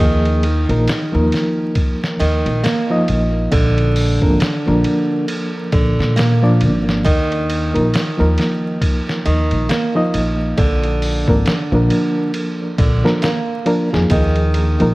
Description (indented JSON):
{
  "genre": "trip hop",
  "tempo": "68 BPM",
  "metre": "4/4",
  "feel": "swing 59% on 16ths",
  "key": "unclear",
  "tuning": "A4 = 440 Hz",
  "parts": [
    { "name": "reed electric piano", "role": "accompaniment", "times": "0.0-14.9 s", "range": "F3 to Eb5", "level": "-19 LUFS", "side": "equal", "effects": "fast tremolo, low-pass filter, tape echo" },
    { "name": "flamenco guitar", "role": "arpeggios", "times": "0.0-14.9 s", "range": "D3 to Bb3", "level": "-21 LUFS", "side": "right 2 dB", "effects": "digital delay" },
    { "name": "upright bass", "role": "bass", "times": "0.0-14.9 s", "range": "Ab1 to Bb2", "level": "-17 LUFS", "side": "equal", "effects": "none" },
    { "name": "trip hop sampler-style drum kit", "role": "drums", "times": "0.3-14.9 s", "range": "hi-hat, kick drum, ride cymbal, snare drum", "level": "-21 LUFS", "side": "equal", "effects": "none" }
  ],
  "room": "light reverb",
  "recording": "worn, warbling old tape, cassette tape, vinyl crackle, warbly pitch drift",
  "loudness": "-14 LUFS",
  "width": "side -20 dB against mid",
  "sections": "0.0-14.9 A section",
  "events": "none",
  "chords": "0.0 Ebsus2; 3.5 Bb; 7.1 Ebsus2; 10.6 Bb; 14.1 Ebsus2",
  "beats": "0.88 1.76 2.64 | 3.52 4.41 5.29 6.17 | 7.05 7.93 8.82 9.70 | 10.58 11.46 12.35 13.23 | 14.11"
}